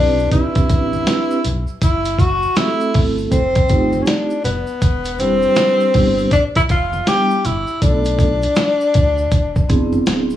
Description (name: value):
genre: hip hop, jazz-hop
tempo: 80 BPM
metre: 4/4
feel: swing 63% on 16ths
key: unclear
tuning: A4 = 440 Hz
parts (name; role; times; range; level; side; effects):
- breathy tenor saxophone; melody; 0.0-10.1 s; B3 to G4; -18 LUFS; left 2 dB; slapback echo
- vibraphone with soft mallets; accompaniment; 0.0-10.4 s; G3 to B4; -20 LUFS; right 2 dB; none
- soft dub sub bass; bass; 0.0-10.4 s; D1 to D2; -22 LUFS; equal; none
- maracas and congas; percussion; 0.2-10.4 s; none; -27 LUFS; right 5 dB; none
- dusty soul sampler-style drum kit; drums; 0.3-10.3 s; hi-hat, kick drum, snare drum; -18 LUFS; equal; none
room: light reverb, small room ambience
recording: worn, warbling old tape, cassette tape, warbly pitch drift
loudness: -14 LUFS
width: side -12 dB against mid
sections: 0.0-10.4 A section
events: none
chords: 0.0 Am11; 1.8 F#m7b5; 3.3 F9; 4.8 Em7; 7.8 Bm7b5; 9.3 E7b13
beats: 0.32 1.07 | 1.82 2.57 3.32 4.07 | 4.82 5.57 6.32 7.07 | 7.82 8.57 9.32 10.07